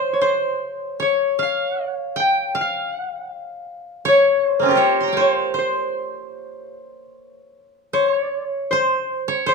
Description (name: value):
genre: japanese traditional, Japanese chamber music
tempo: 78 BPM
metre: 2/4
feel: uneven beats, rubato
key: C in sen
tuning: A4 = 440 Hz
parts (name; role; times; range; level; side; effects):
- concert harp; melody; 0.0-9.5 s; C5 to G5; -20 LUFS; left 3 dB; none
- koto; second line; 0.0-9.5 s; Bb3 to C6; -21 LUFS; right 3 dB; none
room: light reverb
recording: close, detailed microphones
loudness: -18 LUFS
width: side -4 dB against mid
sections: 0.0-7.2 A section; 7.2-9.5 B section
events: none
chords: none